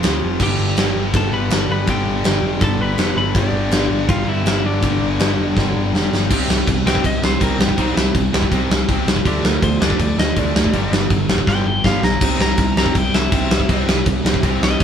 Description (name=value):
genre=punk rock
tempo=162 BPM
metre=4/4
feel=straight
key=C major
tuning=A4 = 440 Hz
part: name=crunchy overdriven guitar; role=riff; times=0.0-14.8 s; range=F2 to D4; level=-24 LUFS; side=right 6 dB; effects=none
part: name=tight distorted guitar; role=riff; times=0.0-14.8 s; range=F2 to D4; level=-26 LUFS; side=left 6 dB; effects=distortion
part: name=overdriven picked electric bass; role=bass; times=0.0-14.8 s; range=F1 to D2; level=-23 LUFS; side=equal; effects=none
part: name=big rock drum kit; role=drums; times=0.0-14.8 s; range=crash cymbal, kick drum, ride cymbal, snare drum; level=-18 LUFS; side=equal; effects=none
part: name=lightly driven lead guitar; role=melody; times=0.4-14.8 s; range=D4 to B5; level=-24 LUFS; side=left 2 dB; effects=none
part: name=thick fuzz guitar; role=riff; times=0.4-14.8 s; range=G2 to G4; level=-26 LUFS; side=left 2 dB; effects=distortion
room=light reverb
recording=band playing live in one room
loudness=-15 LUFS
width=side -8 dB against mid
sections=0.0-6.3 A section; 6.3-14.8 B section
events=half time 0.0-6.3; drum fill 5.6-6.3, 11.5-12.2; lead electric guitar solo 6.3-14.8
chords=0.4 G; 6.3 C; 9.3 Dm; 10.7 G; 12.2 C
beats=0.03 | 0.40 0.77 1.14 1.51 | 1.88 2.25 2.61 2.98 | 3.35 3.72 4.09 4.46 | 4.83 5.20 5.56 5.93 | 6.30 6.67 7.04 7.41 | 7.78 8.15 8.52 8.89 | 9.26 9.63 10.00 10.37 | 10.74 11.11 11.47 11.85 | 12.21 12.58 12.95 13.32 | 13.69 14.06 14.43 14.80